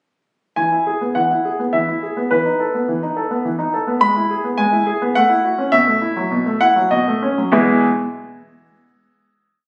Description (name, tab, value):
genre	classical-period piano sonatina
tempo	104 BPM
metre	3/4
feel	uneven beats, rubato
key	E major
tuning	A4 = 440 Hz
part	clear baby grand piano	solo	0.6-7.9 s	E2 to B5	-18 LUFS	equal	none
room	wet recital hall reverb, RT60 1.4 s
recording	recorded on a phone in the room, club reverb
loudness	-18 LUFS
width	mono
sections	0.6-7.5 A section; 7.5-9.3 final chord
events	none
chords	0.6 E; 2.3 B7/E; 4.0 E/G#; 5.2 F#m7/A; 5.7 B7sus4; 6.9 B9; 7.5 E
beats	| 0.57 1.16 1.74 | 2.31 2.88 3.45 | 4.02 4.59 5.16 | 5.72 6.31 6.91 | 7.53